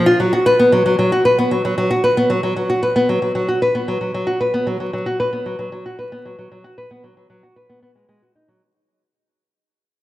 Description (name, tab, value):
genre	folktronica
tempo	114 BPM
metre	4/4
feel	straight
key	G# dorian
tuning	A4 = 440 Hz
part	nylon-string guitar	arpeggios	0.0-8.6 s	F#3 to B4	-15 LUFS	equal	low-pass filter, tape echo
room	wet recital hall reverb, RT60 1.8 s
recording	vinyl crackle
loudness	-15 LUFS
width	side -15 dB against mid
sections	0.2-8.6 A section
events	fade-out 0.2-8.6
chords	none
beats	| 0.19 0.72 1.25 1.77 | 2.30 2.82 3.35 3.88 | 4.40 4.93 5.46 5.98 | 6.51 7.04 7.56 8.09